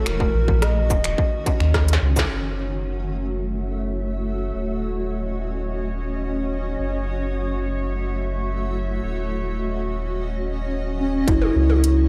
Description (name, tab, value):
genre	IDM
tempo	107 BPM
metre	4/4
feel	straight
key	F# dorian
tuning	A4 = 436 Hz
part	warbly nostalgic lead	melody	0.0-2.0, 11.0-12.1 s	C#4 to D#5	-26 LUFS	equal	chorus, analog delay
part	granular cloud pad	sustained chords	0.0-12.1 s	D#3 to F#5	-31 LUFS	equal	built-in reverb
part	warm sub bass	bass	0.1-12.1 s	D#1 to D#2	-26 LUFS	equal	none
part	industrial drum kit	drums	0.1-2.3, 11.3-11.9 s	finger snaps, hi-hat, rim click, shaker, snare drum, toms	-29 LUFS	equal	none
part	electronic kick drum	drums	0.2-2.3, 11.3-11.4 s	none	-25 LUFS	equal	distortion
part	bubbling stepped-filter texture	texture	2.3-12.1 s	C#5	-38 LUFS	equal	chorus, built-in reverb
room	little or no reverb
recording	dry, gritty hardware recording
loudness	-23 LUFS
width	mono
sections	0.0-2.3 A section; 2.3-11.3 B section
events	drum fill 1.7-2.3; band accent 2.2; filter sweep on ambient pad 2.3-11.3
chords	0.1 D#m7; 2.3 F#m7; 4.5 D#m7; 6.8 F#m7; 9.0 D#m7; 11.3 F#m7